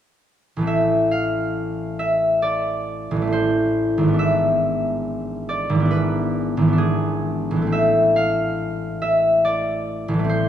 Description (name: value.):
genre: classical, solo harp piece.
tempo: 61-73 BPM.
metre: 4/4.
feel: rubato.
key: A minor.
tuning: A4 = 440 Hz.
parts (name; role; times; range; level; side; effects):
concert harp; solo; 0.6-10.5 s; G#1 to F5; -18 LUFS; equal; none.
room: moderate scoring stage reverb, RT60 2.1 s.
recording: none.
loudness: -18 LUFS.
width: side -10 dB against mid.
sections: 0.7-10.5 A section.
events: none.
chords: 0.7 Am; 4.2 E7/G#; 7.7 Am.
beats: | 0.68 1.57 2.44 3.33 | 4.20 5.06 5.92 6.78 | 7.72 8.60 9.45 10.29.